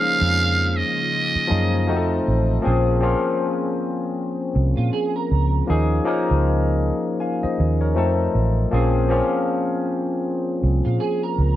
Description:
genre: R&B, neo-soul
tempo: 79 BPM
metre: 4/4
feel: swing 59% on 16ths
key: Bb minor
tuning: A4 = 444 Hz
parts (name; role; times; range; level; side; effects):
- trumpet with metal mute; melody; 0.0-2.3 s; Eb5 to F5; -21 LUFS; right 2 dB; none
- barky tine electric piano; accompaniment; 0.0-11.6 s; F3 to Ab5; -22 LUFS; left 2 dB; lush chorus
- ethereal airy pad; sustained chords; 0.0-2.6 s; Db3 to F4; -35 LUFS; right 1 dB; none
- vintage muted fingered electric bass; bass; 0.2-11.6 s; A1 to Bb2; -20 LUFS; right 1 dB; none
- electric guitar through a small old amp; second line; 4.8-5.7, 10.8-11.6 s; F4 to Bb4; -26 LUFS; right 8 dB; ensemble chorus
room: light reverb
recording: none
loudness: -18 LUFS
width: side -13 dB against mid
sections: 0.0-2.6 A section; 2.6-11.6 B section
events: none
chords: 0.0 Eb9sus4; 1.9 F7; 2.6 Bbm9; 5.7 Eb9sus4; 8.0 F7; 8.7 Bbm9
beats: 0.35 1.11 1.87 | 2.63 3.39 4.15 4.91 | 5.67 6.43 7.19 7.95 | 8.71 9.47 10.23 10.99

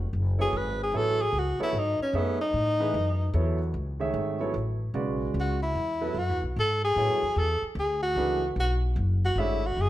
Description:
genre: modal jazz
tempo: 149 BPM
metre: 3/4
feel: swing 65% on 8ths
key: B dorian from 4.9 s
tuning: A4 = 437 Hz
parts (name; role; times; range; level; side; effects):
- upright bass; bass; 0.0-9.9 s; F1 to A2; -28 LUFS; equal; none
- breathy tenor saxophone; melody; 0.4-3.3, 5.4-9.9 s; Cb4 to Cb5; -27 LUFS; equal; none
- warm concert grand piano; accompaniment; 0.4-9.6 s; C#3 to Fb5; -32 LUFS; right 3 dB; none
room: moderate large studio reverb, RT60 1.4 s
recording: none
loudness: -25 LUFS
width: side -14 dB against mid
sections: 0.0-4.9 A section; 4.9-9.9 A section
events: tenor saxophone solo 0.0-9.9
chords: 0.1 Gbm11; 4.9 B9sus4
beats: | 0.13 0.53 0.93 | 1.33 1.74 2.14 | 2.54 2.94 3.34 | 3.75 4.15 4.55 | 4.95 5.35 5.75 | 6.16 6.56 6.96 | 7.36 7.76 8.16 | 8.57 8.97 9.37 | 9.77

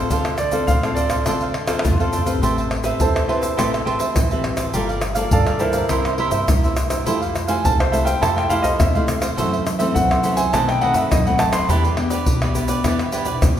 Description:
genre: samba and choro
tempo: 104 BPM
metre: 4/4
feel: straight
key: A minor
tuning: A4 = 439 Hz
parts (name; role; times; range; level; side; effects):
- warm concert grand piano; melody; 0.0-12.8 s; E4 to C6; -22 LUFS; right 1 dB; none
- mandolin; second line; 0.0-2.4 s; F4 to G4; -34 LUFS; left 2 dB; none
- cavaquinho; accompaniment; 0.0-13.6 s; D4 to A5; -24 LUFS; right 4 dB; none
- nylon-string guitar; accompaniment; 0.0-13.6 s; F#2 to B4; -24 LUFS; left 2 dB; none
- upright bass; bass; 0.1-13.6 s; F#1 to G2; -25 LUFS; equal; none
- egg shaker, surdo, pandeiro and tamborim; percussion; 0.1-13.6 s; none; -21 LUFS; left 1 dB; none
room: wet recital hall reverb, RT60 1.6 s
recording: recorded in a church or concert hall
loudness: -17 LUFS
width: side -10 dB against mid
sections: 0.0-2.4 A section; 2.4-13.6 B section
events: drum fill 1.7-2.4; grand piano solo 2.4-13.6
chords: 0.0 Dm7; 2.4 Am9; 4.7 Gm9; 5.9 C7; 7.1 Fmaj9; 9.4 F#m7b5; 10.5 B7b9; 11.7 Em7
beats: | 0.10 0.68 1.26 1.84 | 2.42 3.00 3.59 4.17 | 4.75 5.33 5.91 6.49 | 7.06 7.64 8.22 8.80 | 9.38 9.96 10.54 11.12 | 11.69 12.27 12.85 13.43

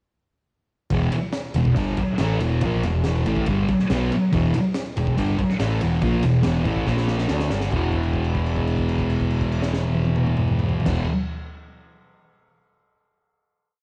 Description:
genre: garage rock duo or trio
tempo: 141 BPM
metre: 4/4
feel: straight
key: unclear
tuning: A4 = 440 Hz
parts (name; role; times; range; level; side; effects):
- thick fuzz guitar; riff; 0.9-11.1 s; E2 to D4; -24 LUFS; equal; distortion, cassette tape
- growling picked electric bass; bass; 0.9-11.0 s; E1 to D2; -28 LUFS; equal; overdrive
- crunchy breakbeat drum kit; drums; 0.9-11.0 s; crash cymbal, kick drum, ride cymbal, snare drum, toms; -30 LUFS; equal; cassette tape
room: light reverb, small room ambience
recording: home recording on cassette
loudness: -22 LUFS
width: mono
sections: 0.9-7.7 riff; 7.7-11.1 final chord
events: drum fill 6.9-7.7; held note 7.7-10.9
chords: 0.9 E5; 6.9 A#5; 7.3 Gsus2; 7.7 E5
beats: | 0.90 1.33 1.76 2.19 | 2.62 3.04 3.47 3.90 | 4.32 4.75 5.17 5.59 | 6.02 6.44 6.86 7.29 | 7.71 8.13 8.56 8.98 | 9.41 9.84 10.26 10.69

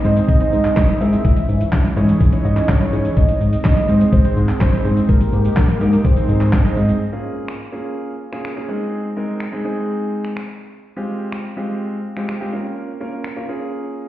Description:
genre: dance-pop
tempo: 125 BPM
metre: 4/4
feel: straight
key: Ab major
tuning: A4 = 440 Hz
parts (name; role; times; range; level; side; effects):
- soft octave-layered synth lead; melody; 0.0-6.8 s; Bb4 to Fb5; -23 LUFS; right 1 dB; chorus, digital delay
- clear grand piano; accompaniment; 0.0-14.1 s; Ab3 to Eb5; -25 LUFS; right 1 dB; sidechain pumping
- filtered supersaw swell; sustained chords; 0.0-7.0 s; Fb3 to G4; -24 LUFS; equal; sidechain pumping
- chorused synth bass; bass; 0.0-6.9 s; Ab1 to Ab2; -17 LUFS; equal; sidechain pumping
- detuned 8-bit digital drum machine; drums; 0.0-13.4 s; finger snaps, handclaps, hi-hat, kick drum, shaker, snare drum; -17 LUFS; equal; none
room: light reverb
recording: heard muffled through a wall, stone room reverb, EQ, nothing above 10.5 kHz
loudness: -15 LUFS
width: side -14 dB against mid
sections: 0.0-7.0 A section; 7.0-14.1 B section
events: none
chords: 0.0 Ab; 1.2 Dbmadd9/Ab; 3.2 Ab; 5.1 Eb/Ab; 6.0 Ab; 7.0 Db6; 8.7 Ab; 10.8 Fmadd9/Ab; 12.5 Bbm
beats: 0.29 0.77 | 1.25 1.73 2.21 2.69 | 3.17 3.65 4.13 4.61 | 5.09 5.57 6.05 6.53 | 7.01 7.49 7.97 8.45 | 8.93 9.41 9.89 10.37 | 10.85 11.33 11.81 12.29 | 12.77 13.25 13.73

